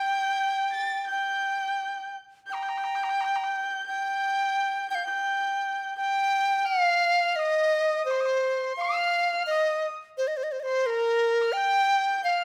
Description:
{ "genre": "chinese traditional, Chinese chamber ensemble", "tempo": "86 BPM", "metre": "2/4", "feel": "rubato", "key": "G jue mode", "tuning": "A4 = 441 Hz", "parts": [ { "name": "large dizi", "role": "melody", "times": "0.0-12.4 s", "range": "Bb4 to G5", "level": "-27 LUFS", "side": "equal", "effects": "none" }, { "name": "clear erhu", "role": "second line", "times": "0.0-12.4 s", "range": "Bb5 to A6", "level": "-34 LUFS", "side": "equal", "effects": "none" } ], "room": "light reverb", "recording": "close, detailed microphones", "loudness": "-26 LUFS", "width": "mono", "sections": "0.0-6.7 A section; 6.7-12.4 B section", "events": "none", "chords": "none", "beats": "0.36 | 1.06 1.76 | 2.46 3.15 | 3.84 4.54 | 5.25 5.96 | 6.67 7.37 | 8.08 8.78 | 9.48 10.17 | 10.86 11.56 | 12.27" }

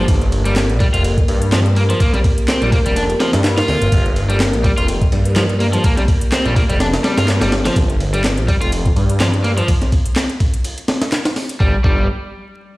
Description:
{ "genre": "breakbeat, breaks", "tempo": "125 BPM", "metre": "4/4", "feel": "swing 55% on 16ths", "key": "G minor", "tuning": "A4 = 440 Hz", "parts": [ { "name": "dark analog pad", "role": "sustained chords", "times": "0.0-7.8 s", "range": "Bb3 to Bb4", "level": "-24 LUFS", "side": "equal", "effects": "chorus, vintage 12-bit sampler grit, sidechain pumping" }, { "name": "crunchy overdriven guitar", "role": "riff", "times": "0.0-12.1 s", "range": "F3 to F4", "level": "-21 LUFS", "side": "equal", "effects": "spring reverb, tape echo" }, { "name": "phased detuned saw bass", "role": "bass", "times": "0.0-12.1 s", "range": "F1 to G2", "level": "-17 LUFS", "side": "equal", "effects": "phaser" }, { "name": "breakbeat sampler-style drum kit", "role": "drums", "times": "0.1-11.9 s", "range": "hi-hat, kick drum, ride cymbal, snare drum", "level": "-16 LUFS", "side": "equal", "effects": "none" }, { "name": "house drum kit", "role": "drums", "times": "0.1-11.6 s", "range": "handclaps, hi-hat", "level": "-28 LUFS", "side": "equal", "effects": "overdrive" } ], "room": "light reverb", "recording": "played on a big sound system in a bare room, stone room reverb, vinyl crackle", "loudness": "-13 LUFS", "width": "side -20 dB against mid", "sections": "0.0-7.8 A section; 7.8-11.6 B section; 11.6-12.8 C section", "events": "none", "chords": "0.0 Gm; 7.8 N.C.", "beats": "| 0.08 0.56 1.04 1.52 | 2.00 2.48 2.96 3.44 | 3.92 4.40 4.88 5.36 | 5.84 6.32 6.80 7.28 | 7.76 8.24 8.72 9.20 | 9.68 10.16 10.64 11.12 | 11.60" }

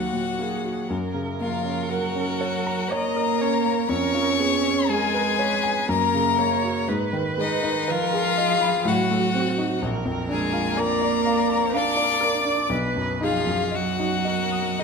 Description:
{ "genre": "classical, slow romantic movement for piano quintet", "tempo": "61 BPM", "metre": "3/4", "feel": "uneven beats, rubato", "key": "unclear", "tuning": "A4 = 440 Hz", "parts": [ { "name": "rich violin", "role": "melody", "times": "0.0-14.8 s", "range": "Eb5 to D6", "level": "-26 LUFS", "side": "left 9 dB", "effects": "none" }, { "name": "dark cello", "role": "second line", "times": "0.0-14.8 s", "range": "D#3 to D4", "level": "-28 LUFS", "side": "right 8 dB", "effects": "none" }, { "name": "rich violin", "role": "second line", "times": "0.0-14.8 s", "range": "D#4 to D5", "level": "-29 LUFS", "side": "left 4 dB", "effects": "none" }, { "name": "dark grand piano", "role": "accompaniment", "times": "0.0-14.8 s", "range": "Bb1 to D#6", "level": "-27 LUFS", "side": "left 1 dB", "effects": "none" }, { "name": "rich viola", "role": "accompaniment", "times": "0.0-14.8 s", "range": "F#4 to Eb5", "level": "-30 LUFS", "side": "right 4 dB", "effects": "none" } ], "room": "moderate recital hall reverb, RT60 1.7 s", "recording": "close, detailed microphones", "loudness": "-20 LUFS", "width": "side -5 dB against mid", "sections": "0.0-14.8 A section", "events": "none", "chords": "0.0 Ebm; 0.9 Gb; 3.9 Db7/F; 5.9 Gb; 6.9 Abm; 8.9 Adim7; 9.8 Bb; 12.7 B", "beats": "| 0.92 1.91 2.92 | 3.90 4.89 5.89 | 6.89 7.90 8.87 | 9.83 10.78 11.75 | 12.72 13.75 14.81" }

